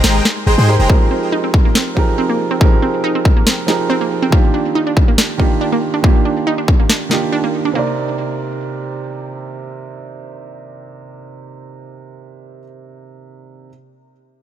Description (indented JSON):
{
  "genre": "future bass",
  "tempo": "140 BPM",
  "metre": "4/4",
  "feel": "swing 53% on 16ths, half-time",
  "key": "C minor",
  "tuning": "A4 = 440 Hz",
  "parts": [
    { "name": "warm baby grand piano", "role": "accompaniment", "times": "0.0-13.7 s", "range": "C3 to D5", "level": "-20 LUFS", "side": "right 4 dB", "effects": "sidechain pumping, digital delay" },
    { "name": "supersaw chords", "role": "riff", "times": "0.0-0.9 s", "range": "Ab3 to C6", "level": "-20 LUFS", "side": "equal", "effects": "lush chorus, sidechain pumping, digital delay" },
    { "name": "warm 808-style bass", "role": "bass", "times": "0.0-0.9 s", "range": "F1 to Ab2", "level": "-13 LUFS", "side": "equal", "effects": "tube saturation, sidechain pumping" },
    { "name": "electronic snare drum", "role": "drums", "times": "0.0-7.2 s", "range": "none", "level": "-18 LUFS", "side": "left 1 dB", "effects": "overdrive" },
    { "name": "wide unison pluck", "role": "arpeggios", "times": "0.9-8.0 s", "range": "Bb3 to Eb4", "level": "-21 LUFS", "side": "right 2 dB", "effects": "sidechain pumping, digital delay" },
    { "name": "electronic kick drum", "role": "drums", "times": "0.9-6.8 s", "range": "none", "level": "-12 LUFS", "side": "equal", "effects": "none" }
  ],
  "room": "light reverb, digital ambience",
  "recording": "none",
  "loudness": "-13 LUFS",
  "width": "side -11 dB against mid",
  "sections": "0.0-7.8 A section; 7.8-11.2 B section",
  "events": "none",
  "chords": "0.0 Fm11; 4.3 Ebmaj9; 7.8 Cm7",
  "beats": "0.04 0.47 | 0.90 1.32 1.75 2.18 | 2.61 3.04 3.47 3.90 | 4.32 4.75 5.18 5.61 | 6.04 6.47 6.89 7.32 | 7.75 8.18 8.61 9.04 | 9.47 9.89 10.32 10.75"
}